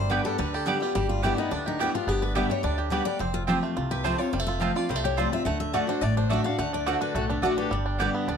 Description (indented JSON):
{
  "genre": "bluegrass",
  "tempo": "213 BPM",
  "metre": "4/4",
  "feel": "straight",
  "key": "G mixolydian",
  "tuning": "A4 = 440 Hz",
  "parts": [
    { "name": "bluegrass banjo", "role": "melody", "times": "0.0-8.4 s", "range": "G3 to G4", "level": "-32 LUFS", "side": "right 6 dB", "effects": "none" },
    { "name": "picked steel-string acoustic guitar", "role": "melody", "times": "0.0-7.7 s", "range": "D4 to F#5", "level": "-30 LUFS", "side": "left 5 dB", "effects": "none" },
    { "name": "picked steel-string acoustic guitar", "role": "accompaniment", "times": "0.0-8.4 s", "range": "F2 to G4", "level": "-29 LUFS", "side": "left 2 dB", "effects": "none" },
    { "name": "upright bass", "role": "bass", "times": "0.0-8.4 s", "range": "F1 to D2", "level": "-31 LUFS", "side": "equal", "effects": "none" },
    { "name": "mandolin", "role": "stabs", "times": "0.1-8.1 s", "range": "A3 to A5", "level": "-29 LUFS", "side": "right 6 dB", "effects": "none" },
    { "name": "clear fiddle", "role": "second line", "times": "7.1-7.7 s", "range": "B3 to G4", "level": "-35 LUFS", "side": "left 4 dB", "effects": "none" }
  ],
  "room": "moderate small room reverb, RT60 0.5 s",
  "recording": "none",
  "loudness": "-24 LUFS",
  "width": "side -7 dB against mid",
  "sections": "0.0-8.4 A section",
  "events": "none",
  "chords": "0.0 G; 3.2 F; 5.5 D; 7.7 G"
}